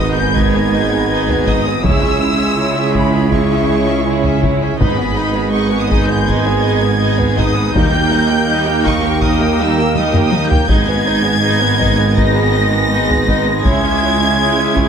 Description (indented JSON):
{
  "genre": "cinematic, epic orchestral film score",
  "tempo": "81 BPM",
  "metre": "4/4",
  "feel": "straight",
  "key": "G# harmonic minor",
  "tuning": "A4 = 440 Hz",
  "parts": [
    { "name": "warm symphonic violin section", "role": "melody", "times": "0.0-14.9 s", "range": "B5 to A#6", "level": "-20 LUFS", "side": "left 2 dB", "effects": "none" },
    { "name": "dark symphonic violin section", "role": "second line", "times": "0.0-14.9 s", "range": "E4 to G5", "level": "-22 LUFS", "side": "equal", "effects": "none" },
    { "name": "rich symphonic viola section", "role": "accompaniment", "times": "0.0-14.9 s", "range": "G3 to G4", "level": "-23 LUFS", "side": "right 1 dB", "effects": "none" },
    { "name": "clear trombone section", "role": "sustained chords", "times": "0.0-14.9 s", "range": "C#3 to A#3", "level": "-23 LUFS", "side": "right 5 dB", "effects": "none" },
    { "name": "clear woodwind section", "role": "sustained chords", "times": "0.0-14.9 s", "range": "A#3 to D#5", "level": "-24 LUFS", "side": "equal", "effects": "none" },
    { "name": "warm French horn section", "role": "sustained chords", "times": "0.0-14.9 s", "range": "A#3 to E4", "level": "-23 LUFS", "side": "left 4 dB", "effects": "none" },
    { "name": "dark tuba", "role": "bass", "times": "0.0-14.9 s", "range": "G#1 to D#2", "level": "-21 LUFS", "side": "right 4 dB", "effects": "none" },
    { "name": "rich studio cello section", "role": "bass", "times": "0.0-14.9 s", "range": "D#2 to C#3", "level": "-21 LUFS", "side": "right 2 dB", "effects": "none" },
    { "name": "rich studio double bass section", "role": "bass", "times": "0.0-14.9 s", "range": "G#1 to D#2", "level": "-22 LUFS", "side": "right 4 dB", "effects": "none" },
    { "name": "impact", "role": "sound effects", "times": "0.0-1.9 s", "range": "none", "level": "barely audible", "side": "none", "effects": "none" },
    { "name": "taiko ensemble", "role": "drums", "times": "0.4-14.9 s", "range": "none", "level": "-19 LUFS", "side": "equal", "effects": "none" },
    { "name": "timpani", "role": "percussion", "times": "4.8-8.8 s", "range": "G#2 to D#3", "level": "-27 LUFS", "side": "left 2 dB", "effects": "none" }
  ],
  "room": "light reverb",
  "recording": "none",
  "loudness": "-12 LUFS",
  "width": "side -7 dB against mid",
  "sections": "0.0-14.9 A section",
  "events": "impact 0.0-1.8; drum fill 10.0-10.7",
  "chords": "0.0 G#m; 1.8 C#m; 4.8 G#m; 7.8 D#; 10.7 G#m; 13.7 C#m"
}